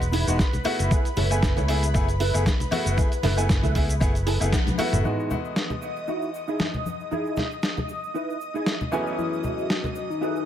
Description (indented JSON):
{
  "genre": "nu-disco, nu disco",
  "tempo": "116 BPM",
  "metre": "4/4",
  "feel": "swing 55% on 16ths",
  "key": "E major",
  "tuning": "A4 = 440 Hz",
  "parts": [
    { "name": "lush unison pad", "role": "sustained chords", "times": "0.0-10.5 s", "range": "B4 to D#6", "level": "-33 LUFS", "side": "left 1 dB", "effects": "chorus, phaser, sidechain pumping" },
    { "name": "fingered electric bass with an envelope filter", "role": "bass", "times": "0.0-5.0 s", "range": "E1 to C#2", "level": "-24 LUFS", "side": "equal", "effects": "none" },
    { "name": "dusty soul sampler-style drum kit", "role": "drums", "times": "0.0-9.8 s", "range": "hi-hat, shaker, snare drum, toms", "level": "-28 LUFS", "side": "equal", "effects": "none" },
    { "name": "cabasa and congas", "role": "percussion", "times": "0.0-10.5 s", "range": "none", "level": "-33 LUFS", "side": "left 2 dB", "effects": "none" },
    { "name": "mellow electric guitar", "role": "riff", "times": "0.1-10.4 s", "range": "D#4 to G#5", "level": "-30 LUFS", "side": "right 3 dB", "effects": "ensemble chorus, low-pass filter" },
    { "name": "bright grand piano", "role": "accompaniment", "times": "0.3-10.5 s", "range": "E2 to G#5", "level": "-30 LUFS", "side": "left 2 dB", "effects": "sidechain pumping, ping-pong delay" },
    { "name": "electronic kick drum", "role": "drums", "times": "0.4-4.6 s", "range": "none", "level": "-23 LUFS", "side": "equal", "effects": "none" },
    { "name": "soft octave-layered synth lead", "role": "melody", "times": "9.2-10.5 s", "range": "D#4 to F#4", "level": "-28 LUFS", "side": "left 5 dB", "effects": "chorus" }
  ],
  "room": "light reverb, digital ambience",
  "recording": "none",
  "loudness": "-22 LUFS",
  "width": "side -10 dB against mid",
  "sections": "0.0-5.0 A section; 5.0-10.5 B section",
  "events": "clean electric guitar fill 4.0-5.0; drum fill 4.5-5.0; band accent 4.5",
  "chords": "0.0 Emaj7; 0.7 F#m11; 5.0 Emaj7; 8.9 F#m11"
}